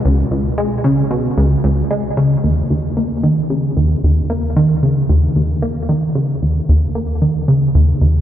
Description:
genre	ambient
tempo	113 BPM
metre	4/4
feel	straight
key	unclear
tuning	A4 = 442 Hz
part	plucky analog bass	solo	0.0-8.2 s	Db2 to Bb3	-13 LUFS	equal	lush chorus, analog delay
room	wet cathedral reverb, RT60 5.4 s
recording	in a vast, echoing space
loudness	-13 LUFS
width	side -11 dB against mid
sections	0.0-2.4 A section; 2.4-8.2 B section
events	none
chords	none

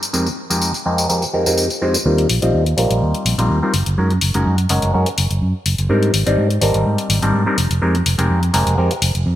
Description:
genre	filtered disco house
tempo	125 BPM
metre	4/4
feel	swing 53% on 16ths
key	Eb major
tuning	A4 = 440 Hz
part	electronic tambourine and hi-hat	drums	0.0-9.2 s	none	-22 LUFS	left 3 dB	overdrive
part	overdriven clav	accompaniment	0.1-8.9 s	F2 to Eb5	-18 LUFS	equal	phaser, vintage 12-bit sampler grit, low-pass filter
part	fingered electric bass	bass	2.1-9.4 s	F1 to Ab2	-17 LUFS	equal	low-pass filter
room	moderate plate reverb, RT60 1.7 s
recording	bright 1980s-style digital production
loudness	-15 LUFS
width	side -13 dB against mid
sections	0.0-2.1 A section; 2.1-9.4 B section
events	build-up 2.1-9.4; filter sweep 2.1-9.4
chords	0.0 Fm11; 2.1 Eb69; 3.7 Gb69; 5.9 Abmaj9#11; 7.6 Fm11

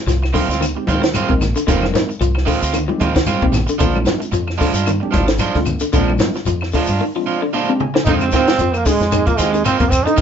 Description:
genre	afrobeat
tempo	113 BPM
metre	4/4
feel	swing 56% on 16ths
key	F dorian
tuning	A4 = 439 Hz
part	electric guitar through a small old amp	arpeggios	0.1-10.2 s	C3 to F3	-22 LUFS	left 4 dB	none
part	electric guitar at the edge of break-up	stabs	0.1-10.2 s	Eb3 to F4	-22 LUFS	right 6 dB	none
part	deep dub fingered electric bass	bass	0.1-10.2 s	F1 to G2	-21 LUFS	equal	none
part	compact cocktail drum kit	drums	0.1-10.2 s	hi-hat, kick drum, snare drum, toms	-20 LUFS	equal	none
part	congas	percussion	0.1-6.6 s	none	-24 LUFS	left 1 dB	none
part	shekere	percussion	0.1-10.2 s	none	-26 LUFS	left 3 dB	none
part	claves	percussion	0.2-10.1 s	none	-31 LUFS	left 6 dB	none
part	tine electric piano	accompaniment	0.8-9.7 s	Ab3 to Ab5	-25 LUFS	right 1 dB	medium stereo tremolo
part	bright trombone	melody	8.0-10.2 s	Ab3 to Eb4	-18 LUFS	right 4 dB	none
part	growling tenor saxophone	second line	8.1-10.2 s	Ab3 to Eb4	-22 LUFS	right 5 dB	none
room	moderate small room reverb, RT60 0.5 s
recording	band playing live in one room, nothing above 7.7 kHz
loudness	-14 LUFS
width	side -8 dB against mid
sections	0.0-8.1 A section; 8.1-10.2 B section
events	tine electric piano fill 7.0-8.1; drum fill 7.5-8.1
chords	0.0 Fm7; 3.8 Bb7 (rootless); 8.1 Fm7

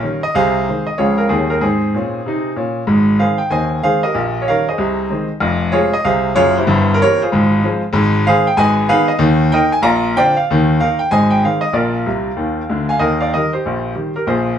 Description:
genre	jazz, stride piano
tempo	189 BPM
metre	4/4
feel	swing 64% on 8ths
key	Ab major, Eb major from 7.9 s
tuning	A4 = 440 Hz
part	bright grand piano	solo	0.0-14.6 s	F1 to Bb5	-13 LUFS	equal	none
room	moderate studio ambience, RT60 0.5 s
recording	band playing live in one room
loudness	-13 LUFS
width	side -9 dB against mid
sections	0.0-2.9 A section; 2.9-13.0 B section; 13.0-14.6 A section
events	grand piano fill 12.1-13.0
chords	0.3 Ab/C; 1.0 Dbmaj7; 1.3 Eb7; 1.6 Ab; 4.1 Eb7/Bb; 4.8 Ab/C; 5.4 Fm; 6.7 C7/G; 7.3 Fm/Ab; 7.9 Ab; 8.6 Abm; 9.2 Eb5; 9.8 Bbadd9; 10.5 Eb5; 11.1 Ab; 11.7 Bb; 13.0 Eb

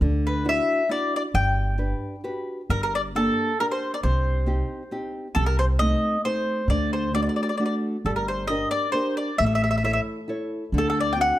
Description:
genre	italian folk, Italian serenade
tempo	135 BPM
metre	3/4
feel	swing 54% on 8ths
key	G harmonic minor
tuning	A4 = 439 Hz
part	nylon-string guitar	accompaniment	0.0-11.4 s	C3 to C#5	-28 LUFS	equal	none
part	upright bass	bass	0.0-11.3 s	G1 to D2	-24 LUFS	equal	none
part	mandolin	melody	0.3-11.4 s	A4 to G5	-24 LUFS	left 1 dB	none
room	light reverb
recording	close, detailed microphones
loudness	-22 LUFS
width	side -14 dB against mid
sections	0.0-2.7 A section; 2.7-11.4 B section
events	none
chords	0.0 Dadd9; 1.3 Gmaj7; 2.7 Gm; 4.0 Cm; 5.4 Adim/C; 6.7 D; 8.0 Gm; 9.4 A; 10.7 D7

